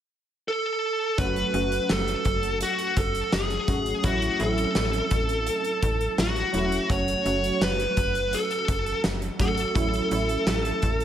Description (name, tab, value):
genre	1980s-style pop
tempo	84 BPM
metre	4/4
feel	straight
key	unclear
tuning	A4 = 442 Hz
part	smooth overdriven lead guitar	melody	0.5-11.0 s	F#4 to C#5	-26 LUFS	equal	digital delay
part	warm analog keys	accompaniment	1.2-11.0 s	F#3 to F#4	-30 LUFS	right 2 dB	chorus
part	slap-like FM bass	bass	1.2-11.0 s	E1 to A1	-30 LUFS	equal	none
part	big rock drum kit	drums	1.2-11.0 s	hi-hat, kick drum, snare drum	-28 LUFS	equal	gated reverb
room	light reverb, studio reverb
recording	none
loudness	-22 LUFS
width	side -10 dB against mid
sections	0.0-1.2 A section; 1.2-11.0 B section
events	none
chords	0.0 N.C.; 1.2 F#m; 4.0 A6; 6.9 F#m; 9.8 A6